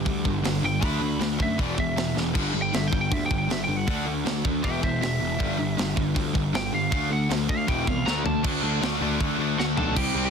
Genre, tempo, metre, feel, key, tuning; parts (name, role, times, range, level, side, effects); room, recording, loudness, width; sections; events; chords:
punk rock; 158 BPM; 4/4; straight; A4 = 440 Hz
lightly driven lead guitar; melody; 0.0-10.3 s; F#4 to B5; -30 LUFS; equal
fuzz guitar; riff; 0.0-10.3 s; E2 to D4; -31 LUFS; equal; distortion
overdriven semi-hollow guitar; riff; 0.0-10.3 s; E2 to D4; -30 LUFS; left 14 dB
tight distorted guitar; riff; 0.0-10.3 s; E2 to D4; -31 LUFS; right 11 dB; distortion
fuzz picked electric bass; bass; 0.0-10.3 s; E1 to F#2; -30 LUFS; equal; overdrive
tight metal drum kit; drums; 0.1-10.1 s; crash cymbal, hi-hat, kick drum, snare drum, splash cymbal, toms; -28 LUFS; equal; soft clipping on kick
little or no reverb; dense, heavily limited modern master; -22 LUFS; side -6 dB against mid
0.0-8.4 A section; 8.4-10.0 B section
lead electric guitar solo 0.0-8.4; drum fill 2.2, 8.1-8.4, 9.6-10.0
0.0 G5; 0.8 D; 1.6 E5; 2.4 G5; 3.9 D5; 4.6 E5; 5.4 G5; 6.9 D5; 7.7 Em; 8.1 D5